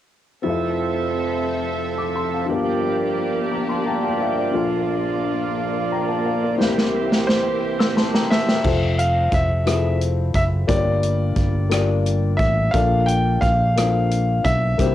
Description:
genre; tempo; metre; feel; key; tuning
slow gospel; 59 BPM (dotted quarters); 6/8; straight; F major; A4 = 438 Hz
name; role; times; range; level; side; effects
dark grand piano; accompaniment; 0.4-14.9 s; F1 to E6; -24 LUFS; left 6 dB; cassette tape, plate reverb
bright tonewheel organ; sustained chords; 0.4-8.6 s; E3 to E5; -24 LUFS; right 7 dB; slow rotary speaker, overdrive, cassette tape
warm studio string section; sustained chords; 0.4-8.6 s; F3 to E5; -28 LUFS; equal; cassette tape
natural country drum kit; drums; 6.6-14.9 s; crash cymbal, hi-hat, kick drum, rim click, snare drum; -22 LUFS; equal; cassette tape
bright grand piano; melody; 7.3-14.9 s; C5 to G5; -22 LUFS; equal; plate reverb
fingered electric bass; bass; 8.6-14.9 s; F1 to C2; -20 LUFS; right 1 dB; none
room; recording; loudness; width
moderate studio reverb, RT60 0.6 s; home recording on cassette; -18 LUFS; side -12 dB against mid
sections
0.5-8.6 A section; 8.6-14.9 B section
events
grand piano fill 3.5-4.5; drum fill 6.6-8.6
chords
0.5 Fmaj7; 2.5 Gm7; 4.5 Bbmaj7; 6.6 C7; 8.6 Fmaj7; 10.7 Gm7; 12.7 Bbmaj7

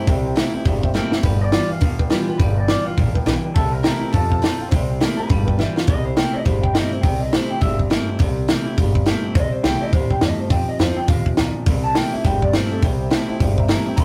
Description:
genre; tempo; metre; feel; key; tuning
rockabilly; 207 BPM; 4/4; swing 61% on 8ths; C major; A4 = 440 Hz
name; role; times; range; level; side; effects
electric guitar through a small old amp; melody; 0.0-14.0 s; A4 to C6; -29 LUFS; equal; none
honky-tonk upright piano; accompaniment; 0.0-5.8, 12.8-14.0 s; B4 to C6; -34 LUFS; equal; none
picked steel-string acoustic guitar; accompaniment; 0.0-14.0 s; F2 to F4; -30 LUFS; equal; none
electric guitar through a small old amp; riff; 0.0-14.0 s; F2 to A3; -29 LUFS; equal; none
upright bass; bass; 0.1-14.0 s; G1 to F2; -26 LUFS; equal; none
compact cocktail drum kit; drums; 0.1-14.0 s; hi-hat, kick drum, snare drum; -22 LUFS; equal; none
room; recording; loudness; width
moderate booth ambience, RT60 0.2 s; rough rehearsal-room recording, warm saturation; -19 LUFS; mono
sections
0.0-5.9 A section; 5.9-14.0 B section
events
drum fill 0.9, 5.6; clean electric guitar solo 5.9-14.0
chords
0.0 C7; 1.2 G7; 3.6 C7; 4.1 F7; 4.7 C7; 5.3 G7; 5.9 C7; 10.5 F7; 11.7 C7

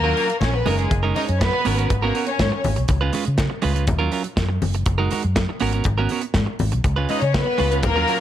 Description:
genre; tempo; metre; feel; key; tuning
disco; 121 BPM; 4/4; straight; F# major; A4 = 440 Hz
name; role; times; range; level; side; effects
rich studio violin section; second line; 0.0-2.6, 7.1-8.2 s; G#3 to D#5; -22 LUFS; left 2 dB; none
clean electric guitar; accompaniment; 0.0-8.2 s; F#3 to B4; -24 LUFS; right 7 dB; none
vintage muted fingered electric bass; bass; 0.0-8.0 s; F#1 to C#3; -22 LUFS; equal; none
modern studio drum kit; drums; 0.2-8.2 s; hi-hat, kick drum, snare drum; -25 LUFS; equal; none
congas; percussion; 0.4-8.0 s; none; -29 LUFS; left 4 dB; none
room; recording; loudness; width
light reverb, studio reverb; none; -18 LUFS; side -11 dB against mid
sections
0.0-8.2 A section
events
none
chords
0.0 D#m9; 0.7 F#69; 1.7 G#m11; 2.9 C#7; 3.9 D#m9; 4.6 F#69; 5.6 G#m11; 6.8 C#7

